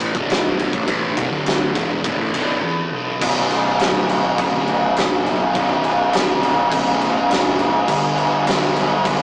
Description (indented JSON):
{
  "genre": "stoner and doom metal",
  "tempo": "103 BPM",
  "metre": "4/4",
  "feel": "straight",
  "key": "B minor",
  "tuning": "A4 = 445 Hz",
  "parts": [
    { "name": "thick fuzz guitar", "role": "riff", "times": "0.0-9.2 s", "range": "B1 to G3", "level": "-30 LUFS", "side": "equal", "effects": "none" },
    { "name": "thick fuzz guitar", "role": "riff", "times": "0.0-9.2 s", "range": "B1 to G3", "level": "-28 LUFS", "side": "equal", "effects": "distortion" },
    { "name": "fuzz picked electric bass", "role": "bass", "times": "0.0-9.2 s", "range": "B0 to B1", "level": "-26 LUFS", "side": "equal", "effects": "overdrive" },
    { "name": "oversized low-tuned drum kit", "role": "drums", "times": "0.0-9.2 s", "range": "crash cymbal, kick drum, ride cymbal, snare drum", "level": "-20 LUFS", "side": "equal", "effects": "none" }
  ],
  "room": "light reverb",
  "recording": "rough rehearsal-room recording, tube saturation, small speaker sound",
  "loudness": "-19 LUFS",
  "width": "mono",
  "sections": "0.0-3.2 A section; 3.2-9.2 B section",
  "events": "break 2.6-3.2",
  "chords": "0.0 Bm; 7.9 G"
}